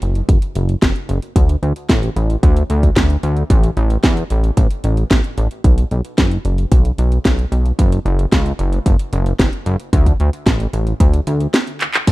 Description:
italo disco; 112 BPM; 4/4; straight; A4 = 440 Hz
chorused synth bass; bass; 0.0-12.1 s; F#1 to E2; -16 LUFS; equal
house drum kit; drums; 0.0-12.1 s; crash cymbal, handclaps, hi-hat, snare drum, tambourine; -18 LUFS; equal; studio reverb
electronic kick drum; drums; 0.3-12.1 s; -14 LUFS; equal; studio reverb
little or no reverb; dry, close 1970s-style studio recording; -13 LUFS; side -19 dB against mid
0.0-12.1 A section
break 11.5-12.1; drum fill 11.8
0.29 0.82 | 1.36 1.90 2.43 2.97 | 3.50 4.04 4.57 5.11 | 5.64 6.18 6.72 7.25 | 7.79 8.32 8.86 9.39 | 9.93 10.47 11.00 11.54 | 12.07

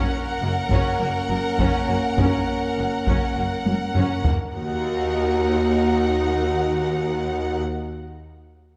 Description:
cinematic, epic orchestral film score; 103 BPM; 4/4; straight; Eb minor; A4 = 440 Hz
dark symphonic violin section; melody; 0.0-7.6 s; Gb5; -31 LUFS; equal
warm symphonic violin section; second line; 0.0-7.6 s; Bb4; -34 LUFS; equal
rich symphonic viola section; accompaniment; 0.0-7.6 s; Gb3 to Eb4; -34 LUFS; equal
dark French horn section; sustained chords; 0.0-7.6 s; Bb3 to Gb4; -28 LUFS; equal
rich symphonic cello section; bass; 0.4-7.6 s; Eb2 to Gb2; -31 LUFS; equal
rich symphonic double bass section; bass; 0.4-7.6 s; Gb1 to Eb2; -30 LUFS; equal
taiko ensemble; drums; 0.7-4.5 s; -27 LUFS; equal
wet scoring stage reverb, RT60 1.9 s; -22 LUFS; mono
0.0-4.5 A section; 4.5-6.8 B section
drum fill 3.6-4.5
0.0 Gb; 4.5 Ebm
0.41 0.99 1.57 | 2.17 2.76 3.35 3.94 | 4.53 5.11 5.69 6.26

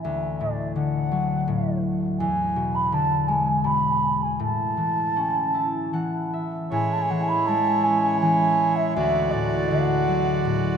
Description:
celtic folk, Celtic slow air; 76-85 BPM; 3/4; rubato; A major; A4 = 440 Hz
baroque flute; melody; 0.0-10.8 s; D5 to B5; -24 LUFS; right 2 dB
concert harp; accompaniment; 0.0-10.8 s; D2 to A5; -24 LUFS; left 3 dB
accordion; sustained chords; 6.7-10.8 s; G#3 to D5; -26 LUFS; right 4 dB
wet cathedral reverb, RT60 5.9 s; minimal, uncompressed stereo recording; -21 LUFS; side -7 dB against mid
0.0-6.7 A section; 6.7-10.8 A section
harp fill 5.1-6.7
0.0 D; 2.2 E7; 4.4 A; 6.7 Amaj7; 9.0 D
| 0.04 0.76 1.47 | 2.19 2.92 3.64 | 4.38 5.14 5.92 | 6.71 7.47 8.22 | 8.96 9.71 10.45

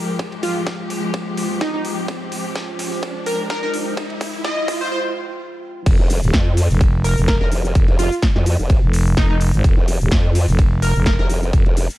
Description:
bass house; 127 BPM; 4/4; swing 55% on 16ths; F minor; A4 = 439 Hz
warm studio string section; sustained chords; 0.0-4.9 s; F3 to G4; -28 LUFS; left 2 dB; sidechain pumping
riser; sound effects; 1.2-4.9 s; -30 LUFS; right 2 dB
deep dark ambient pad; texture; 0.0-4.9 s; Ab3 to G5; -29 LUFS; equal; chorus, built-in reverb, sidechain pumping
breakbeat sampler-style drum kit; drums; 0.2-11.9 s; ride cymbal, snare drum; -36 LUFS; right 2 dB; high-pass filter on snare, sidechain pumping on cymbals, high-pass filter on cymbals
electronic kick drum; drums; 0.2-11.6 s; -17 LUFS; equal; high-pass filter on kick, high-pass filter on room
plucky unison lead; melody; 0.4-11.3 s; Eb4 to Eb5; -25 LUFS; right 1 dB; lush chorus, digital delay
big-room dance drum kit; drums; 0.4-12.0 s; cabasa, crash cymbal, hi-hat, snare drum; -27 LUFS; equal
growling FM bass; bass; 5.9-11.6 s; Eb1 to Ab1; -17 LUFS; equal; sidechain pumping
formant-sweep wobble bass; bass; 6.0-11.9 s; F1 to F2; -18 LUFS; equal; chorus, overdrive, sidechain pumping
digital ambience; dark, warm production, high-pass filter; -16 LUFS; side -16 dB against mid
0.0-5.9 A section; 5.9-12.0 B section
build-up 0.0-5.9; riser 1.2-4.9; drum fill 2.1-4.9; break 4.9-5.9; drop 5.9-12.0
0.0 Fmadd9; 5.9 N.C.
| 0.19 0.67 1.14 1.61 | 2.08 2.56 3.03 3.50 | 3.97 4.45 4.92 5.39 | 5.86 6.33 6.81 7.28 | 7.75 8.22 8.70 9.17 | 9.64 10.12 10.59 11.06 | 11.53

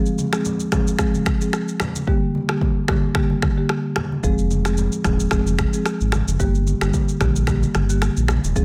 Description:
afrobeats; 111 BPM; 4/4; swing 55% on 16ths; A4 = 440 Hz
marimba with soft mallets; accompaniment; 0.0-8.6 s; D3 to Ab4; -25 LUFS; equal
afro-pop drum kit; drums; 0.1-8.6 s; finger snaps, kick drum, rim click, shaker; -24 LUFS; equal
congas; percussion; 0.2-8.6 s; -32 LUFS; equal
sub bass with octave; bass; 4.2-8.6 s; Eb1 to Bb1; -23 LUFS; equal
little or no reverb; -20 LUFS; mono
0.0-8.6 A section
hi-hats muted 2.1-4.2
0.0 Fm; 2.1 Gm; 4.2 Fm; 6.4 Gm
0.45 0.99 1.53 | 2.07 2.62 3.16 3.70 | 4.24 4.78 5.32 5.86 | 6.40 6.94 7.48 8.02 | 8.56

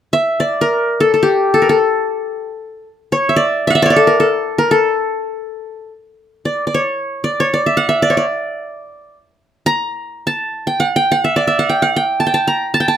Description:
turkish; free time; A makam hicaz; A4 = 440 Hz
qanun; melody; 0.1-13.0 s; G4 to Bb5; -14 LUFS; equal
light reverb; close, detailed microphones; -13 LUFS; side -9 dB against mid
0.0-13.0 A section
free time

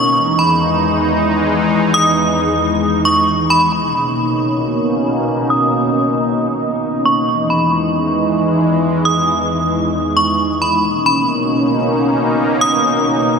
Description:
hip hop; 135 BPM; 4/4; half-time; B major; A4 = 440 Hz
metallic FM bell; melody; 0.0-13.0 s; B5 to D#6; -17 LUFS; right 1 dB; chorus, low-pass filter, tape echo
sweeping resonant pad; sustained chords; 0.0-13.4 s; E2 to D#4; -15 LUFS; equal; chorus, low-pass filter
wet huge ambient reverb, RT60 9.0 s; dreamy mix soaked in reverb; -13 LUFS; side -5 dB against mid
0.0-3.7 A section; 3.7-10.8 B section; 10.8-13.4 C section
filter sweep 3.7-10.8
0.2 Emaj7; 3.7 Bmaj9; 7.3 Emaj7; 10.8 Bmaj9
| 0.17 0.61 1.06 1.50 | 1.95 2.39 2.84 3.28 | 3.73 4.17 4.62 5.06 | 5.50 5.95 6.39 6.84 | 7.28 7.73 8.17 8.62 | 9.06 9.50 9.95 10.39 | 10.84 11.28 11.73 12.17 | 12.62 13.06

